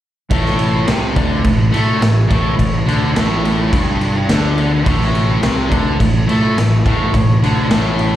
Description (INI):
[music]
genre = garage rock duo or trio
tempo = 105 BPM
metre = 4/4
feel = straight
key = unclear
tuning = A4 = 440 Hz
[part]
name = fuzz guitar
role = riff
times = 0.3-8.2 s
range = G2 to A3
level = -16 LUFS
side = equal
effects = distortion, slapback echo
[part]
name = growling fingered electric bass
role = bass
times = 0.3-8.2 s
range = G1 to A2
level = -19 LUFS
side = equal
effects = overdrive
[part]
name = raw garage drum kit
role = drums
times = 0.3-8.2 s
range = crash cymbal, kick drum, snare drum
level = -17 LUFS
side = equal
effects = none
[sound]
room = small room ambience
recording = live gig heard through the venue's PA, recital hall reverb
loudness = -12 LUFS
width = side -12 dB against mid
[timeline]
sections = 0.3-8.2 A section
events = none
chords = 0.3 A5